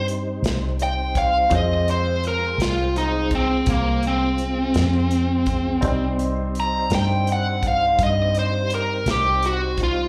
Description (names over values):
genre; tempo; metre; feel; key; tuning
slow blues; 56 BPM (dotted quarters); 12/8; straight; C minor; A4 = 440 Hz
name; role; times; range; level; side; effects
smooth overdriven lead guitar; melody; 0.0-10.1 s; Bb3 to Bb5; -24 LUFS; equal; slapback echo
clear upright piano; accompaniment; 0.0-10.1 s; G3 to C5; -34 LUFS; equal; slapback echo
tonewheel organ; sustained chords; 0.0-10.1 s; G3 to C5; -33 LUFS; equal; slow rotary speaker, overdrive, chorus vibrato
vintage muted fingered electric bass; bass; 0.0-10.1 s; C2 to G2; -26 LUFS; equal; none
natural country drum kit; drums; 0.1-9.9 s; hi-hat, kick drum, snare drum; -30 LUFS; equal; none
room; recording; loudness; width
light reverb, small room ambience; live gig heard through the venue's PA, club reverb; -21 LUFS; mono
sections
0.0-10.1 A section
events
lead electric guitar solo 0.0-10.1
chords
0.0 Cm; 1.5 Fm; 5.8 Cm